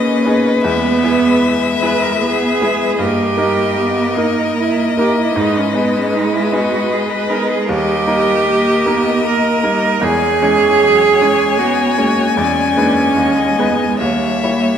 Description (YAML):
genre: classical, slow romantic movement for piano quintet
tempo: 76 BPM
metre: 3/4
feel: rubato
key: G# minor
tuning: A4 = 442 Hz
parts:
  - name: rich violin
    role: melody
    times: 0.0-14.8 s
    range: D#5 to G#5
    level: -20 LUFS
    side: left 7 dB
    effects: none
  - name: clear violin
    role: second line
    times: 0.0-14.8 s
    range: A#4 to D#5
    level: -24 LUFS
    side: left 5 dB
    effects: none
  - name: rich cello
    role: second line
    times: 0.0-14.8 s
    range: A#3 to B4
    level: -16 LUFS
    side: right 4 dB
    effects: none
  - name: bright baby grand piano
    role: accompaniment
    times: 0.0-14.8 s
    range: D#2 to C#5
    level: -19 LUFS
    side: equal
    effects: none
  - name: rich viola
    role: accompaniment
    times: 0.0-14.8 s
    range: E3 to B3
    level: -20 LUFS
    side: right 1 dB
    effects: none
room: wet concert hall reverb, RT60 2.3 s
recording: none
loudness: -12 LUFS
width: side -8 dB against mid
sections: 0.0-14.8 A section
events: none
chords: 0.0 G#m; 0.6 E; 3.0 D#/G; 5.4 G#m; 7.7 D#; 10.0 C#m/E; 12.4 E7; 13.2 G#m/D#; 14.0 D#7b9